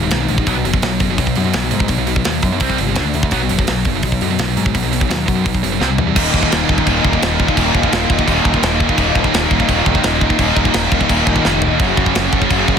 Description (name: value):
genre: heavy metal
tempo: 170 BPM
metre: 4/4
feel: straight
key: Eb minor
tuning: A4 = 440 Hz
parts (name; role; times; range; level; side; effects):
- heavy high-gain guitar; riff; 0.0-12.8 s; Eb2 to D4; -19 LUFS; right 15 dB; distortion
- sludgy distorted guitar; riff; 0.0-12.8 s; Ab2 to Gb4; -20 LUFS; left 13 dB; overdrive
- growling picked electric bass; bass; 0.0-12.8 s; Eb1 to Ab2; -21 LUFS; equal; overdrive
- tight metal drum kit; drums; 0.1-12.8 s; crash cymbal, hi-hat, kick drum, snare drum, toms; -18 LUFS; equal; soft clipping on kick, soft clipping on snare
- crunchy overdriven guitar; riff; 6.2-12.8 s; Eb2 to Gb3; -20 LUFS; right 1 dB; none
room: light reverb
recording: dense, heavily limited modern master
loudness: -13 LUFS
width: side -7 dB against mid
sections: 0.0-6.2 A section; 6.2-12.8 B section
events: drum fill 5.8-6.2, 11.4-11.8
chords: 0.5 B5; 2.6 C5; 3.0 D5; 3.3 B5; 5.8 C5; 6.2 Eb5; 11.8 Gb5